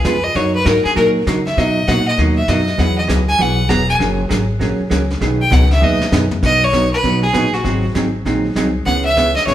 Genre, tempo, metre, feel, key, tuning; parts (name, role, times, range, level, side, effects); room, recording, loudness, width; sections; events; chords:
country, western swing; 198 BPM; 4/4; swing 63% on 8ths; B major; A4 = 440 Hz
clear fiddle; melody; 0.0-9.5 s; F#4 to A#5; -17 LUFS; equal
hollow-body jazz guitar; accompaniment; 0.0-9.5 s; B2 to G#4; -18 LUFS; right 2 dB
upright bass; bass; 0.0-9.5 s; E1 to C#3; -18 LUFS; left 1 dB
vintage brush drum kit; drums; 0.0-9.5 s; brushed snare drum, crash cymbal, hi-hat, kick drum, snare drum, toms; -24 LUFS; left 1 dB
wet large studio reverb, RT60 1.2 s; band playing live in one room; -13 LUFS; side -12 dB against mid
0.0-6.4 A section; 6.4-9.5 B section
fiddle solo 0.0-6.4; drum fill 5.8-6.4
0.4 F#6; 1.6 Bmaj7; 2.8 Eadd9; 4.0 F#add9; 5.2 B6; 6.4 B; 7.6 G#7; 8.9 C#m7